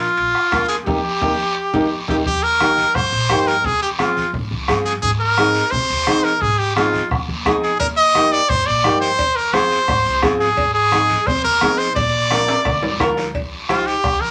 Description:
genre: latin, cumbia.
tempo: 173 BPM.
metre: 4/4.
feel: straight.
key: unclear.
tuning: A4 = 443 Hz.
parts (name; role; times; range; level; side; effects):
brilliant trumpet; melody; 0.0-14.3 s; F4 to Eb5; -19 LUFS; equal; none.
flamenco guitar; accompaniment; 0.0-13.9 s; Bb3 to C5; -23 LUFS; equal; none.
upright bass; bass; 0.0-14.2 s; Bb1 to C3; -30 LUFS; equal; none.
guiro; percussion; 0.0-14.3 s; none; -32 LUFS; equal; none.
timbales and cowbell; percussion; 0.0-2.2, 7.8-14.2 s; none; -30 LUFS; equal; none.
congas; percussion; 0.2-14.3 s; none; -32 LUFS; equal; none.
bombo; percussion; 0.3-14.2 s; none; -26 LUFS; equal; none.
room: wet small room reverb, RT60 0.5 s.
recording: none.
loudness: -18 LUFS.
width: mono.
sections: 0.0-2.3 A section; 2.3-13.3 B section.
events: band accent 0.9-2.3; drum fill 1.6-2.3, 12.3-13.3.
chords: 0.0 Bb; 0.9 Eb; 3.6 Fm; 5.0 Abadd9; 7.8 Eb; 9.2 Fm; 10.6 Abadd9; 12.0 Bb; 13.3 Cm.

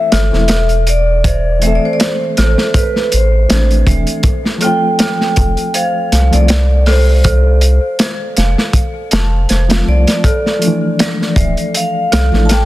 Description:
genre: trip hop.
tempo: 80 BPM.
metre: 4/4.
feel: swing 55% on 16ths.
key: unclear.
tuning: A4 = 440 Hz.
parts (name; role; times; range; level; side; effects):
vibraphone with medium hard mallets; melody; 0.0-12.7 s; B4 to A5; -18 LUFS; equal; tape echo.
reed electric piano; accompaniment; 0.0-12.5 s; E3 to A4; -19 LUFS; left 1 dB; overdrive, harmonic tremolo, tape echo.
dark detuned synth bell; arpeggios; 0.0-12.7 s; A4 to A5; -22 LUFS; right 1 dB; chorus, vintage 12-bit sampler grit, ping-pong delay.
warm sub bass; bass; 0.1-12.7 s; D1 to C2; -12 LUFS; equal; none.
crunchy breakbeat drum kit; drums; 0.1-12.7 s; hi-hat, kick drum, snare drum; -15 LUFS; equal; none.
room: small room ambience.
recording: dense, heavily limited modern master.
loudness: -10 LUFS.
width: side -16 dB against mid.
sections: 0.0-12.7 A section.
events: none.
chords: 0.0 Am; 4.2 F; 10.2 Dmadd9.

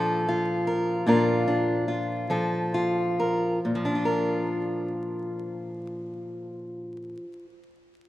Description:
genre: folk.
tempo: 43-52 BPM (dotted quarters).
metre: 6/8.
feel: straight.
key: Bb major.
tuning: A4 = 439 Hz.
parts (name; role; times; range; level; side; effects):
fingerpicked steel-string acoustic guitar; accompaniment; 0.0-7.6 s; Bb2 to Bb4; -24 LUFS; equal; none.
room: moderate lush hall reverb, RT60 2.7 s.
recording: rough home demo mix, vinyl crackle, lossy compression artefacts.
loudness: -24 LUFS.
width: side -15 dB against mid.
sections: 0.0-3.6 A section; 3.6-6.4 B section.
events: slowing down 0.0-3.6.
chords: 0.0 Bb.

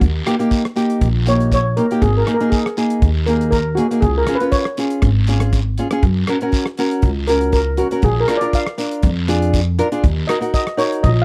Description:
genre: calypso.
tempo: 120 BPM.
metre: 4/4.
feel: swing 54% on 16ths.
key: F# major.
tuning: A4 = 440 Hz.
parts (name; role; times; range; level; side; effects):
upright bass; bass; 0.0-11.2 s; G#1 to F#2; -20 LUFS; equal; none.
damped 70s drum kit; drums; 0.0-11.2 s; hi-hat, kick drum, rim click; -22 LUFS; equal; none.
guiro; percussion; 0.0-11.2 s; none; -34 LUFS; equal; none.
nylon-string guitar; accompaniment; 0.3-11.1 s; A#3 to B4; -21 LUFS; equal; none.
steel pan; melody; 1.3-11.2 s; F#4 to E#5; -22 LUFS; equal; none.
room: small room ambience.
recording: dry, close 1970s-style studio recording.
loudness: -17 LUFS.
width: mono.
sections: 0.0-11.2 A section.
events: steel pan solo 0.0-11.2.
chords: 0.0 D#; 2.0 G#sus2; 4.0 C#; 6.0 F#; 8.0 A#; 10.0 D#m.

